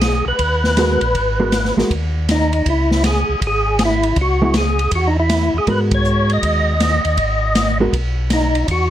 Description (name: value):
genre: soul jazz organ trio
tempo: 159 BPM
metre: 4/4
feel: swing 65% on 8ths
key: G# minor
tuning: A4 = 439 Hz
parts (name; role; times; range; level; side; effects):
- percussive tonewheel organ; melody; 0.0-8.9 s; D#4 to D#5; -18 LUFS; equal; slow rotary speaker, overdrive, chorus vibrato
- mellow tonewheel organ; bass; 0.0-8.9 s; G#1 to G#2; -19 LUFS; equal; slow rotary speaker
- open jazz drum kit; drums; 0.0-8.8 s; hi-hat, kick drum, ride cymbal, snare drum; -21 LUFS; equal; none
- hollow-body jazz guitar; accompaniment; 0.8-1.9, 4.4-7.9 s; G#3 to A#4; -19 LUFS; right 1 dB; none
room: moderate studio reverb, RT60 0.7 s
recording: none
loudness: -14 LUFS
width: side -12 dB against mid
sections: 0.0-8.9 A section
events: band accent 5.9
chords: 0.0 G#m9; 2.7 C#m; 5.7 G#m9